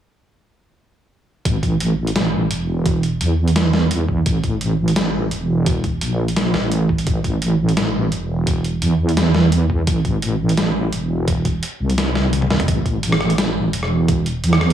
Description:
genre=half-time drum and bass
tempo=171 BPM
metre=4/4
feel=half-time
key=A phrygian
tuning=A4 = 440 Hz
part: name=deep soft wobble bass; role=bass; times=1.5-14.7 s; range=E1 to E2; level=-18 LUFS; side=right 1 dB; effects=chorus
part: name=boom bap sampler-style drum kit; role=drums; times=1.5-14.7 s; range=hi-hat, rim click, snare drum, toms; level=-22 LUFS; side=equal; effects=none
part: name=electronic kick drum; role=drums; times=1.5-14.2 s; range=none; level=-21 LUFS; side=equal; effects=none
room=light reverb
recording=none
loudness=-16 LUFS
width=side -10 dB against mid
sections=1.5-14.7 A section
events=drum fill 12.3-12.7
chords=none

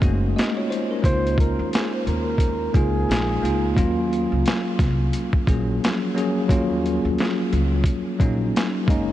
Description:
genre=lo-fi hip hop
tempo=88 BPM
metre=4/4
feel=swing 60% on 16ths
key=Eb dorian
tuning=A4 = 441 Hz
part: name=bell-like tine electric piano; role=accompaniment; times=0.0-9.1 s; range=F3 to Eb5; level=-23 LUFS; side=left 1 dB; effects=medium stereo tremolo
part: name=upright bass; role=bass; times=0.0-9.1 s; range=Gb1 to Eb2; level=-24 LUFS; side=equal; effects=none
part: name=boom bap sampler-style drum kit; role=drums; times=0.0-9.1 s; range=hi-hat, kick drum, snare drum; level=-23 LUFS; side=equal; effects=overdrive, vintage 12-bit sampler grit
part: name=breathy flugelhorn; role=melody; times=1.1-3.7 s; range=Ab4 to C5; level=-30 LUFS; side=right 2 dB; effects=ping-pong delay
room=light reverb, small room ambience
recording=cassette tape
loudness=-19 LUFS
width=side -13 dB against mid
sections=0.0-9.1 A section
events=none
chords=0.0 Gb6; 1.0 Db69; 3.8 Ebm7

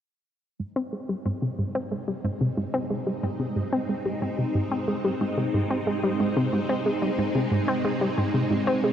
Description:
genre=ambient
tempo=91 BPM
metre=4/4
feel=straight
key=unclear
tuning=A4 = 438 Hz
part: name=phased string machine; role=sustained chords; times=0.6-8.9 s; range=Ab3 to Eb4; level=-29 LUFS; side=equal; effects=ensemble chorus, phaser
part: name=analog pluck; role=riff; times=0.6-8.9 s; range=Ab2 to C4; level=-25 LUFS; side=equal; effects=chorus, tape echo
room=wet huge ambient reverb, RT60 7.5 s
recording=dark, warm production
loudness=-24 LUFS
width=side -9 dB against mid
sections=0.6-8.9 A section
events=fade-in on string machine 0.6-8.9; filter sweep on synth arpeggio sound 0.6-8.9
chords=0.6 Ab

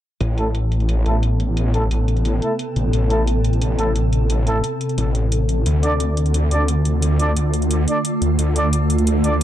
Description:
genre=dark technical drum and bass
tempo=176 BPM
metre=4/4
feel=straight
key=A minor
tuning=A4 = 443 Hz
part: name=swarming drone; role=sustained chords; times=1.1-9.4 s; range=C3 to A4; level=-23 LUFS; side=equal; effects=built-in reverb
part: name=snarling distorted saw bass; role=bass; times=0.2-9.4 s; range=A1 to D2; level=-18 LUFS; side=equal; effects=tube saturation
part: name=electronic hi-hat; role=drums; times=0.2-9.4 s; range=none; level=-31 LUFS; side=equal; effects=low-pass filter on hats, low-pass filter on room
part: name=mellow brass ensemble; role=stabs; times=0.4-9.3 s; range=A3 to D5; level=-25 LUFS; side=right 1 dB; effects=low-pass filter, tape echo
room=little or no reverb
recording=none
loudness=-16 LUFS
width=side -12 dB against mid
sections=0.2-9.4 A section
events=filter sweep on synth drone 0.2-9.4; filter sweep on brass ensemble 0.2-9.4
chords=0.2 Amadd9; 5.7 Dm

